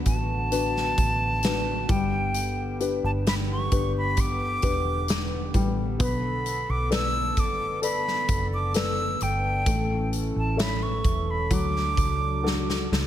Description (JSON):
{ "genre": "pop ballad", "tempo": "66 BPM", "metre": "4/4", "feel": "straight", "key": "D major", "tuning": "A4 = 440 Hz", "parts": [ { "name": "felt-muted upright piano", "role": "accompaniment", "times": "0.0-13.1 s", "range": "D3 to E5", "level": "-31 LUFS", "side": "left 5 dB", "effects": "none" }, { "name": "chorused pulse-width pad", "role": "sustained chords", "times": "0.0-13.1 s", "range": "D3 to A4", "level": "-34 LUFS", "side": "left 1 dB", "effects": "none" }, { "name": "vintage muted fingered electric bass", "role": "bass", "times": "0.0-13.1 s", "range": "E1 to D2", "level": "-29 LUFS", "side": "right 1 dB", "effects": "none" }, { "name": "breathy silver concert flute", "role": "melody", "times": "0.1-12.9 s", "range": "G5 to E6", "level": "-29 LUFS", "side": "right 1 dB", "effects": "none" }, { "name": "huge arena drum kit", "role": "drums", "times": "0.1-13.1 s", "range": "hi-hat, kick drum, snare drum", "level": "-27 LUFS", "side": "equal", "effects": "none" } ], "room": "light reverb", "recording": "none", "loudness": "-23 LUFS", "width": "side -11 dB against mid", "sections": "0.0-13.1 A section", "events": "drum fill 12.4-13.1", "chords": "0.0 D6; 1.9 G; 6.0 Bm7; 9.7 A; 11.5 D" }